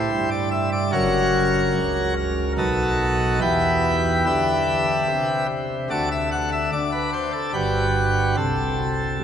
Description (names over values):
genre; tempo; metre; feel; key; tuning
classical, chorale-style piece for pipe organ; 73 BPM; 3/4; rubato; E minor; A4 = 441 Hz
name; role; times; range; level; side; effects
pipe organ, plenum; solo; 0.0-9.2 s; F#1 to F#5; -19 LUFS; equal; none
room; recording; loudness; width
wet cathedral reverb, RT60 5.2 s; none; -19 LUFS; side -8 dB against mid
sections
0.0-9.2 A section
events
none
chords
0.0 C; 0.9 F#; 2.6 B7; 3.4 Em; 5.9 D; 7.6 Gmaj7; 8.4 C5